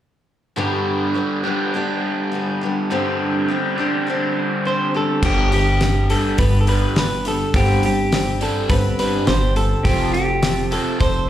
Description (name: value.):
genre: folk rock and heartland rock.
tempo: 104 BPM.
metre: 4/4.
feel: straight.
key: G mixolydian.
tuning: A4 = 439 Hz.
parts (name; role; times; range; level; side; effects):
picked steel-string acoustic guitar; accompaniment; 0.6-11.3 s; G2 to A4; -24 LUFS; left 2 dB; none.
raw garage guitar; riff; 0.6-11.3 s; F2 to G4; -23 LUFS; right 1 dB; overdrive, phaser, slapback echo.
clean electric guitar; melody; 4.7-11.3 s; G4 to C5; -22 LUFS; equal; slapback echo, analog delay.
upright bass; bass; 5.2-11.3 s; F1 to G1; -20 LUFS; equal; none.
damped 70s drum kit; drums; 5.2-11.1 s; crash cymbal, hi-hat, kick drum, snare drum; -23 LUFS; equal; none.
room: light reverb.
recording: live gig heard through the venue's PA, club reverb.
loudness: -17 LUFS.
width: side -11 dB against mid.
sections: 0.6-5.2 A section; 5.2-11.3 B section.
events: none.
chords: 0.6 G; 2.9 Csus2/G; 5.2 G; 7.5 Csus2/G; 9.9 F.